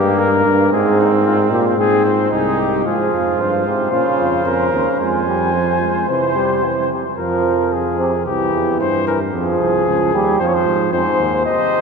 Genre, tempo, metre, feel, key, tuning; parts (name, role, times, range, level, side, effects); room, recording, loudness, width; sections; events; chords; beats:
classical, imitative canzona for brass ensemble; 112 BPM; 4/4; straight; F minor; A4 = 440 Hz
dark trumpet; melody; 0.0-11.8 s; Eb4 to Ab5; -19 LUFS; left 5 dB
mellow trumpet; second line; 0.0-6.9, 11.4-11.8 s; Bb3 to C5; -22 LUFS; right 5 dB
mellow bass trombone; bass; 0.0-11.4 s; C2 to C3; -19 LUFS; right 1 dB
clear euphonium; accompaniment; 2.9-11.8 s; Ab2 to Ab3; -19 LUFS; right 3 dB
wet cathedral reverb, RT60 5.7 s; minimal, uncompressed stereo recording; -14 LUFS; side -5 dB against mid
0.0-2.9 A section; 2.9-7.2 B section; 7.2-11.8 C section
0.0 Eb/G (rootless); 0.7 Ab; 2.9 Fm; 3.9 Bbm; 5.0 Fm; 6.1 C; 7.2 Fm; 8.3 C; 9.3 Fm
0.19 | 0.73 1.26 1.79 2.32 | 2.86 3.40 3.93 4.46 | 5.00 5.55 6.09 6.64 | 7.19 7.72 8.26 8.80 | 9.34 9.87 10.40 10.93 | 11.45